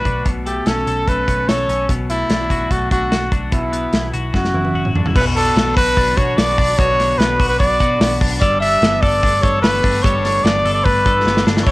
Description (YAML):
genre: jangly indie pop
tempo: 147 BPM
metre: 4/4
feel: straight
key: B minor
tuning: A4 = 440 Hz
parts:
  - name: warm trumpet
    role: melody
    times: 0.0-11.7 s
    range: E4 to E5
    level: -18 LUFS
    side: equal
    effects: cassette tape, plate reverb
  - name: twelve-string electric guitar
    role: arpeggios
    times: 0.0-11.7 s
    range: F#2 to A4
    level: -22 LUFS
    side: left 3 dB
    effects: spring reverb, cassette tape, plate reverb
  - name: vintage muted picked electric bass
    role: bass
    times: 0.0-11.7 s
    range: E1 to B2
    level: -23 LUFS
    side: equal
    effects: none
  - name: modern studio drum kit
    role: drums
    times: 0.1-11.7 s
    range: crash cymbal, hi-hat, kick drum, snare drum, splash cymbal, toms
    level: -18 LUFS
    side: equal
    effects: none
  - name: soft string machine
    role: sustained chords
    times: 5.1-11.7 s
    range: D3 to G4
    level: -31 LUFS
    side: equal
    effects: phaser, ensemble chorus, cassette tape, plate reverb
  - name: glockenspiel with hard plastic mallets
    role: second line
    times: 5.2-11.7 s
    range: A5 to E6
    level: -29 LUFS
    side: right 2 dB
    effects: none
room: light reverb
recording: home recording on cassette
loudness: -14 LUFS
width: side -20 dB against mid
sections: 0.0-5.2 A section; 5.2-11.7 B section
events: drum fill 4.3-5.2, 11.3-11.7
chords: 0.3 Aadd9/B; 1.9 D/B; 3.5 Esus2/B; 4.3 Dadd9/F#; 5.2 Bm; 8.4 Gadd9